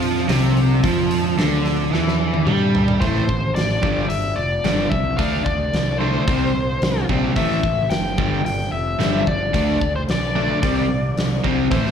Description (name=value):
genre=hard rock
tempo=110 BPM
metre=4/4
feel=straight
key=unclear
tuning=A4 = 440 Hz
part: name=overdriven tonewheel organ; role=sustained chords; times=0.0-3.0 s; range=D4 to E5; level=-33 LUFS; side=left 1 dB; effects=none
part: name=cranked stack guitar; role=riff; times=0.0-11.9 s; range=G2 to D4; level=-23 LUFS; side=right 11 dB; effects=overdrive
part: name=crunchy overdriven guitar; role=riff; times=0.0-11.9 s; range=G2 to D4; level=-23 LUFS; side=left 8 dB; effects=slapback echo
part: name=fuzz picked electric bass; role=bass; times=0.0-11.9 s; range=F1 to G2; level=-23 LUFS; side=right 1 dB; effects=overdrive
part: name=huge arena drum kit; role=drums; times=0.0-11.9 s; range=hi-hat, kick drum, snare drum, toms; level=-23 LUFS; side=right 1 dB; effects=none
part: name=biting lead guitar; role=melody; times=3.0-11.9 s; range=C5 to G5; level=-24 LUFS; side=left 3 dB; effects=overdrive, slapback echo, plate reverb
room=light reverb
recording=live gig heard through the venue's PA, club reverb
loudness=-17 LUFS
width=side -7 dB against mid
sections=0.0-3.0 A section; 3.0-11.9 B section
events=drum fill 1.9-3.0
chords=0.0 D5; 3.0 Am; 3.8 G5; 5.2 D5; 6.3 C5; 7.4 A5; 8.2 G5; 9.5 D5; 10.6 C5